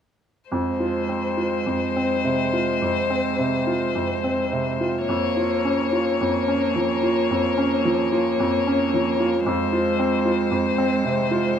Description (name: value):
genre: classical, slow romantic movement for piano quartet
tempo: 52-58 BPM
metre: 4/4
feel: rubato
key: F minor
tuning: A4 = 440 Hz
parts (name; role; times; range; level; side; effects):
- rich violin; melody; 0.5-11.6 s; C5 to Db5; -25 LUFS; left 8 dB; none
- clear cello; second line; 0.5-11.6 s; Ab3 to Bb3; -27 LUFS; right 6 dB; none
- bright baby grand piano; accompaniment; 0.5-11.6 s; F2 to F4; -22 LUFS; right 1 dB; none
room: moderate recital hall reverb, RT60 1.8 s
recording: close, detailed microphones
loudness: -20 LUFS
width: side -8 dB against mid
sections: 0.5-11.6 A section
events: none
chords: 0.5 Fm; 5.1 Bbm/F; 9.5 Fm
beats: | 0.51 1.66 2.80 3.94 | 5.08 6.20 7.30 8.39 | 9.46 10.51 11.58